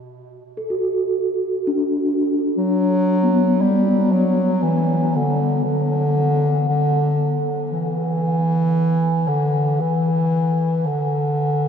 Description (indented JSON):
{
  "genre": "dark ambient drone",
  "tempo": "58 BPM",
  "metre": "4/4",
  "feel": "straight",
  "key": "unclear",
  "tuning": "A4 = 440 Hz",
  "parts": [
    { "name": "gamelan-type bronze metallophone", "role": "arpeggios", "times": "0.6-9.5 s", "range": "B3 to A4", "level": "-22 LUFS", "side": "left 1 dB", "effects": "ping-pong delay" },
    { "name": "mellow bass clarinet", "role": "melody", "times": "2.6-11.7 s", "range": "D3 to G3", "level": "-18 LUFS", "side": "equal", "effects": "ping-pong delay" }
  ],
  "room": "wet huge ambient reverb, RT60 7.5 s",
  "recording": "dark, warm production",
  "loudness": "-17 LUFS",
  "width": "side -7 dB against mid",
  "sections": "0.0-11.7 A section",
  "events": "none",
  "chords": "0.0 E5"
}